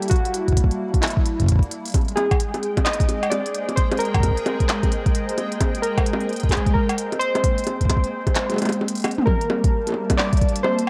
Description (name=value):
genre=IDM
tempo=131 BPM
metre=4/4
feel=swing 62% on 16ths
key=unclear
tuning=A4 = 437 Hz
part: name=warbly lo-fi synth keys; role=melody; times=0.0-10.9 s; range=E4 to Eb5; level=-28 LUFS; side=equal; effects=chorus, dub echo
part: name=hollow soft pad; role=sustained chords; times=0.0-10.9 s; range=G3 to A5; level=-30 LUFS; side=equal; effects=ensemble chorus
part: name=organic electronic drum kit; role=drums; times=0.0-10.9 s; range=bongos, cowbell, handclaps, hi-hat, toms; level=-28 LUFS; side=equal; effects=none
part: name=electronic kick drum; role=drums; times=0.1-10.5 s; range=none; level=-22 LUFS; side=equal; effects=none
part: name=bubbling stepped-filter texture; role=texture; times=1.9-9.3 s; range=Ab4 to G5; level=-39 LUFS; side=equal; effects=chorus, built-in reverb
room=digital ambience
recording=echo-heavy mix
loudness=-21 LUFS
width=mono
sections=0.0-9.3 A section; 9.3-10.9 B section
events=kick drops out 8.4-9.3; drum fill 9.0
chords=0.0 Gm6; 1.9 Abadd9; 9.3 Gm6